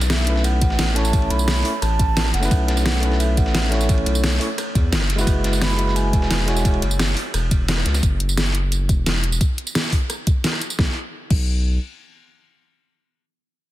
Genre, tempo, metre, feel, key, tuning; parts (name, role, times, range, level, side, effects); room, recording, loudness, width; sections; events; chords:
liquid drum and bass; 174 BPM; 4/4; straight; A4 = 442 Hz
saturated sub bass; bass; 0.0-11.8 s; E1 to E2; -20 LUFS; equal; tube saturation
dusty soul sampler-style drum kit; drums; 0.0-8.0 s; ride cymbal, snare drum; -29 LUFS; right 1 dB; high-pass filter on snare, high-pass filter on cymbals, high-pass filter on room
pop drum kit; drums; 0.0-11.4 s; crash cymbal, hi-hat, rim click, snare drum, tambourine; -24 LUFS; equal; overdrive
mellow hollow concert flute; melody; 0.1-6.8 s; E5 to B5; -28 LUFS; right 3 dB; ping-pong delay
tine electric piano; accompaniment; 0.2-6.8 s; G#3 to C#5; -25 LUFS; equal; vintage 12-bit sampler grit, ping-pong delay
electronic kick drum; drums; 0.6-11.4 s; -19 LUFS; equal; overdrive
light reverb; dense, heavily limited modern master; -17 LUFS; side -15 dB against mid
0.0-10.8 A section; 10.8-13.5 B section
drop 0.0-10.8
0.0 B9sus4; 5.3 F#9sus4; 10.8 N.C.